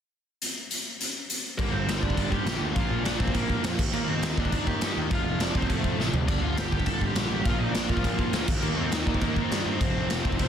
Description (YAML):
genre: punk rock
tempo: 204 BPM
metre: 4/4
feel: straight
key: G minor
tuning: A4 = 440 Hz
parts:
  - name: raw garage drum kit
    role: drums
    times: 0.4-10.5 s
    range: crash cymbal, hi-hat, kick drum, snare drum, splash cymbal, toms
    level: -27 LUFS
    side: equal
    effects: none
  - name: high-gain lead guitar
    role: melody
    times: 1.6-10.5 s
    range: A3 to A5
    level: -32 LUFS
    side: left 1 dB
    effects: distortion
  - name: crunchy overdriven guitar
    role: riff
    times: 1.6-10.5 s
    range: F2 to Eb4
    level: -32 LUFS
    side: right 10 dB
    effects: none
  - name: tight distorted guitar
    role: riff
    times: 1.6-10.5 s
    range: F2 to Eb4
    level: -33 LUFS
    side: left 13 dB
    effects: distortion
  - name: fuzz picked electric bass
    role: bass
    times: 1.6-10.5 s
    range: F1 to G2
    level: -32 LUFS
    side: equal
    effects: overdrive
room: little or no reverb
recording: dense, heavily limited modern master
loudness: -24 LUFS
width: side -8 dB against mid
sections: 0.4-1.6 A section; 1.6-10.5 B section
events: drum fill 6.0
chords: 0.4 N.C.; 1.6 Gm; 2.8 Bb; 3.8 Eb; 5.1 F; 6.3 G5; 7.5 Bb; 8.5 Eb; 9.8 F5